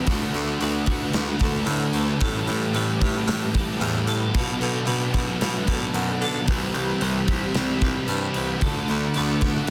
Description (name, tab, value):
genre	rock, shoegaze and dream pop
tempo	112 BPM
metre	4/4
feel	straight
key	D mixolydian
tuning	A4 = 438 Hz
part	string machine, full ensemble	sustained chords	0.0-9.7 s	B4 to E6	-39 LUFS	equal	none
part	twelve-string electric guitar	arpeggios	0.0-9.7 s	F#4 to C5	-37 LUFS	equal	ensemble chorus, digital delay
part	overdriven semi-hollow guitar	riff	0.0-9.7 s	A2 to G4	-31 LUFS	equal	reverse reverb
part	thick fuzz guitar	riff	0.0-9.7 s	A2 to D4	-29 LUFS	equal	distortion, lush chorus
part	raspy baritone saxophone	bass	0.1-9.6 s	C2 to D3	-31 LUFS	equal	none
part	gated 80s drum kit	drums	0.1-9.7 s	hi-hat, kick drum, snare drum	-29 LUFS	equal	none
room	light reverb, studio ambience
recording	dense, heavily limited modern master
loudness	-24 LUFS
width	mono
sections	0.0-9.7 A section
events	none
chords	0.1 D6; 2.2 A9sus4; 4.4 Bm7; 6.5 Cmaj7; 8.6 D6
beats	| 0.08 0.61 1.15 1.68 | 2.22 2.75 3.28 3.82 | 4.35 4.88 5.42 5.95 | 6.49 7.02 7.55 8.09 | 8.62 9.16 9.69